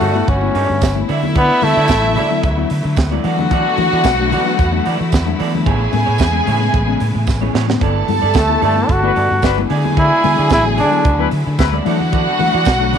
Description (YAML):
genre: disco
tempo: 111 BPM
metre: 4/4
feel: straight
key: unclear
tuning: A4 = 441 Hz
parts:
  - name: breathy flugelhorn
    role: melody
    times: 0.0-2.4, 8.4-11.3 s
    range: A3 to F#4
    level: -17 LUFS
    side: equal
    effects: none
  - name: warm studio violin section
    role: second line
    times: 0.0-13.0 s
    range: E4 to A5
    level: -19 LUFS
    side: equal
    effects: none
  - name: electric guitar through a small old amp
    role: accompaniment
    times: 0.0-13.0 s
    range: B3 to D5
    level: -26 LUFS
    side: right 12 dB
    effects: none
  - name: mellow tine electric piano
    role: accompaniment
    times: 0.0-13.0 s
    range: G2 to E4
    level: -24 LUFS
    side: left 12 dB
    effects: medium stereo tremolo
  - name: clear studio string section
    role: sustained chords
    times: 0.0-13.0 s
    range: C#3 to E4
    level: -26 LUFS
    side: left 1 dB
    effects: none
  - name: fingered electric bass with an envelope filter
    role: bass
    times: 0.0-13.0 s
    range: G1 to E3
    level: -18 LUFS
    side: equal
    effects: none
  - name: tight funk drum kit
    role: drums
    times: 0.0-13.0 s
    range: hi-hat, kick drum, snare drum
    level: -20 LUFS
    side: right 2 dB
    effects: none
  - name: congas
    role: percussion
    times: 0.0-13.0 s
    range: none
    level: -27 LUFS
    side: left 10 dB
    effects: none
  - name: tambourine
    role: percussion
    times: 0.8-12.8 s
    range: none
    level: -37 LUFS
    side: right 15 dB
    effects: none
  - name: clear horn section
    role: stabs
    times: 9.0-11.8 s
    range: E3 to B4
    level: -23 LUFS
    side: left 13 dB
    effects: none
room: moderate echo chamber reverb, RT60 1.9 s, small room reverb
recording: 1960s-style stereo with parts hard left and right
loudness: -13 LUFS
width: side -8 dB against mid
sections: 0.0-13.0 A section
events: drum fill 7.3-7.8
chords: 0.0 G69; 1.1 D69; 3.2 E9sus4; 5.7 Amaj9; 7.8 G69; 9.7 D69; 11.9 E9sus4